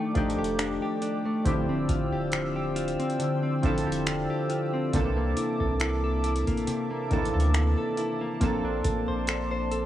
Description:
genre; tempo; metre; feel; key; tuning
contemporary R&B; 69 BPM; 4/4; swing 54% on 16ths; D minor; A4 = 441 Hz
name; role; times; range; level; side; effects
warm analog keys; accompaniment; 0.0-9.9 s; D3 to A4; -31 LUFS; right 2 dB; chorus
chorused pulse-width pad; sustained chords; 0.0-9.9 s; Bb3 to E6; -33 LUFS; left 2 dB; none
direct-recorded clean electric guitar; arpeggios; 0.0-9.9 s; C3 to C5; -30 LUFS; left 2 dB; tape echo
saturated sub bass; bass; 0.2-9.9 s; D1 to D2; -30 LUFS; right 1 dB; none
booming analog drum machine; drums; 0.2-9.9 s; finger snaps, hi-hat, kick drum; -30 LUFS; equal; none
room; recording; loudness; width
light reverb; dry, gritty hardware recording; -25 LUFS; side -12 dB against mid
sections
0.0-9.9 A section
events
none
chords
0.0 Ebmaj9#11; 1.5 Dm11; 4.9 C13; 8.4 Bbmaj9

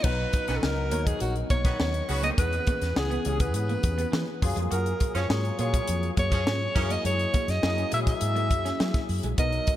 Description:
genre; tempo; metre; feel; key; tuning
polished 1980s jazz-funk pop; 103 BPM; 4/4; straight; F# major; A4 = 440 Hz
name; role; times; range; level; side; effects
breathy alto saxophone; melody; 0.0-9.7 s; F#4 to E5; -30 LUFS; right 1 dB; ping-pong delay
barky tine electric piano; accompaniment; 0.0-9.8 s; E3 to A#5; -33 LUFS; left 4 dB; overdrive, ensemble chorus
electric guitar at the edge of break-up; riff; 0.0-9.7 s; G#3 to F#4; -37 LUFS; right 4 dB; lush chorus
vintage muted fingered electric bass; bass; 0.0-9.6 s; A#1 to F#3; -29 LUFS; equal; none
tight funk drum kit; drums; 0.0-9.8 s; crash cymbal, hi-hat, kick drum, snare drum; -28 LUFS; equal; none
mellow horn section; second line; 0.5-6.9 s; C#3 to A#4; -38 LUFS; right 2 dB; ping-pong delay
room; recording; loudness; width
light reverb, small room reverb; bright 1980s-style digital production; -24 LUFS; side -13 dB against mid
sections
0.0-9.8 A section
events
none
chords
0.0 Bmaj7; 2.4 E6; 4.4 F#maj9; 6.8 F#9

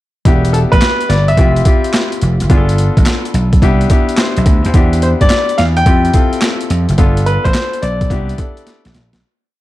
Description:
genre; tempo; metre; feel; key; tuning
R&B, new jack swing; 107 BPM; 4/4; swing 67% on 16ths; unclear; A4 = 436 Hz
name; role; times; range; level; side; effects
clear baby grand piano; accompaniment; 0.3-9.2 s; B3 to E5; -19 LUFS; left 3 dB; none
vintage slap bass; bass; 0.3-9.2 s; E1 to G2; -13 LUFS; equal; none
boom bap sampler-style drum kit; drums; 0.3-9.2 s; handclaps, hi-hat, kick drum, snare drum; -13 LUFS; equal; overdrive
clear concert grand piano; melody; 0.5-8.9 s; A4 to G5; -17 LUFS; left 1 dB; none
room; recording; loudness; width
little or no reverb; dark, warm production; -10 LUFS; side -16 dB against mid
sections
0.3-9.2 verse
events
fade-out 7.0-9.2; drum fill 8.7-9.2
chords
0.3 Em7; 1.4 Cadd11/F; 2.5 G9; 3.6 Cmaj9; 4.7 Em7; 5.9 Fmaj9; 7.0 G9; 8.1 Cmaj9

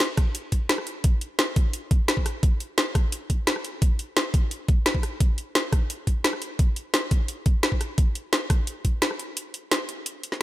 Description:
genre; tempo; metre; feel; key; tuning
drum and bass; 173 BPM; 4/4; straight; none; none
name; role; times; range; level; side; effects
drum and bass drum kit; drums; 0.0-10.4 s; hi-hat, rim click, snare drum; -25 LUFS; equal; overdrive
electronic kick drum; drums; 0.2-8.9 s; none; -21 LUFS; equal; overdrive
room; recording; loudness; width
light reverb; none; -22 LUFS; side -15 dB against mid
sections
0.0-10.4 A section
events
break 9.4-10.4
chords
none

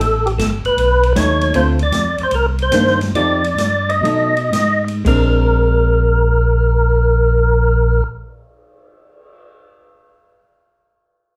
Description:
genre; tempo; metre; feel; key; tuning
soul jazz organ trio; 109-156 BPM; 4/4; swing 67% on 8ths; Bb mixolydian; A4 = 439 Hz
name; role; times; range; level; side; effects
percussive tonewheel organ; melody; 0.0-8.0 s; G4 to Eb5; -19 LUFS; equal; slow rotary speaker, overdrive, chorus vibrato
tonewheel organ; bass; 0.0-8.0 s; G1 to B2; -19 LUFS; equal; slow rotary speaker
open jazz drum kit; drums; 0.0-9.3 s; crash cymbal, cymbal swell, hi-hat, kick drum, ride cymbal, snare drum; -27 LUFS; equal; none
archtop guitar, miked and amplified; accompaniment; 1.2-8.1 s; D3 to G4; -23 LUFS; equal; none
room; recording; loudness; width
moderate large studio reverb, RT60 0.8 s; band playing live in one room; -15 LUFS; mono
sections
0.0-5.1 A section; 5.1-9.5 B section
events
slowing down 1.5-5.1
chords
0.0 Gadd9; 0.8 B7; 1.5 Dm7; 2.3 Cm9; 3.1 F9; 4.0 B7; 5.1 Bb9

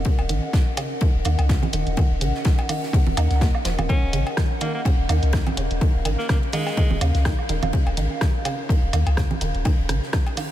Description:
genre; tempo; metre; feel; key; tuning
minimal techno; 125 BPM; 4/4; swing 56% on 16ths; Eb minor; A4 = 440 Hz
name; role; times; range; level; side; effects
punchy sub bass; bass; 0.0-10.0 s; Eb1 to Eb2; -22 LUFS; equal; sidechain pumping
huge arena drum kit; drums; 0.0-10.5 s; hi-hat, ride cymbal, snare drum; -35 LUFS; left 1 dB; sidechain pumping on cymbals, high-pass filter on cymbals, small room ambience, sidechain pumping on hats, high-pass filter on hats, high-pass filter on snare, high-pass filter on room
warbly tape-like pad; texture; 0.0-10.5 s; Db4 to Gb5; -31 LUFS; left 1 dB; chorus, built-in reverb, sidechain pumping
resonant blip pluck; riff; 0.1-10.4 s; Db3 to Eb4; -30 LUFS; right 1 dB; chorus, sidechain pumping, tape echo
electronic kick drum; drums; 0.1-10.2 s; none; -20 LUFS; equal; small room ambience
cowbell, woodblock and congas; percussion; 0.2-10.5 s; none; -32 LUFS; right 4 dB; small room ambience, tape echo
punchy analog drum machine; drums; 0.3-10.5 s; hi-hat, rim click; -32 LUFS; equal; small room ambience
edgy alto saxophone; melody; 3.9-7.0 s; Ab3 to Db4; -33 LUFS; equal; tape echo
room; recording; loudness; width
light reverb; none; -19 LUFS; side -13 dB against mid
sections
0.0-10.5 A section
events
none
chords
0.0 Ebm7

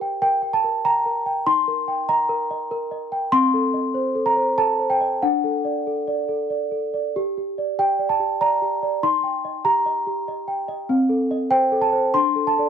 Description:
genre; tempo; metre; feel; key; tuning
classical, lullaby for celesta; 96 BPM; 3/4; rubato; G minor; A4 = 442 Hz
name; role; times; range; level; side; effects
celesta; solo; 0.0-12.7 s; C4 to C6; -19 LUFS; equal; none
room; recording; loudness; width
light reverb; none; -19 LUFS; side -8 dB against mid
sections
0.0-12.7 A section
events
none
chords
0.0 Gm; 1.5 Eb; 3.3 Adim/C; 5.2 D; 7.2 Gm; 9.0 Eb; 10.9 Adim/C; 12.1 D5

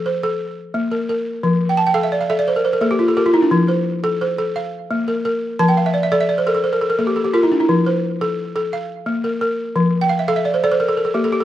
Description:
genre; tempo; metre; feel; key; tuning
west african traditional; 115 BPM (dotted quarters); 12/8; straight; F major; A4 = 436 Hz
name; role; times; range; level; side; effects
balafon; solo; 0.0-11.4 s; F3 to A5; -16 LUFS; equal; slapback echo
room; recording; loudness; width
little or no reverb; recorded outdoors, with no room sound; -16 LUFS; side -12 dB against mid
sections
0.0-11.4 A section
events
balafon fill 1.7-3.5, 5.6-7.7, 10.0-11.4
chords
0.4 N.C.; 1.4 F; 2.5 N.C.; 3.5 F; 4.6 Bb5; 5.6 F; 6.6 N.C.; 7.7 F; 8.7 Bb5; 9.8 F; 10.8 N.C.

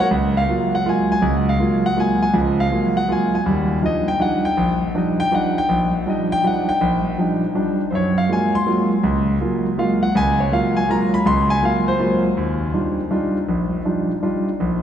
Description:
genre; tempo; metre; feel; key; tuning
jazz; 161 BPM; 3/4; swing 65% on 8ths; unclear; A4 = 440 Hz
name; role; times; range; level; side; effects
warm concert grand piano; solo; 0.0-14.8 s; Bb1 to C6; -17 LUFS; equal; none
room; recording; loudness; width
wet cathedral reverb, RT60 4.4 s; recorded in a church or concert hall; -17 LUFS; side -9 dB against mid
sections
0.0-12.4 A section; 12.4-14.8 B section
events
none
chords
0.0 Gbmaj9; 3.5 Ebmaj9; 7.9 Gbmaj9; 12.4 Ebmaj9

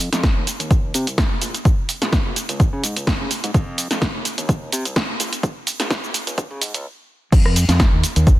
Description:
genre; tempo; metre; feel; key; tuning
filtered disco house; 127 BPM; 4/4; swing 54% on 16ths; F minor; A4 = 439 Hz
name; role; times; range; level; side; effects
modern bright fingered electric bass; bass; 0.0-8.4 s; Ab1 to Db3; -23 LUFS; equal; sidechain pumping, high-pass filter, low-pass filter
punchy analog drum machine; drums; 0.0-8.4 s; crash cymbal, hi-hat, rim click, shaker, snare drum; -22 LUFS; right 1 dB; sidechain pumping on hats, sidechain pumping on perc, sidechain pumping on cymbals
electronic kick drum; drums; 0.2-8.4 s; none; -17 LUFS; equal; none
room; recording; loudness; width
light reverb; dense, heavily limited modern master, high-pass filter; -17 LUFS; side -16 dB against mid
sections
0.0-7.3 A section; 7.3-8.4 B section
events
build-up 0.0-7.3; filter sweep 0.0-7.3; filter sweep on fingered electric bass 0.0-7.3; stop 6.9-7.3; drop 7.3-8.4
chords
none

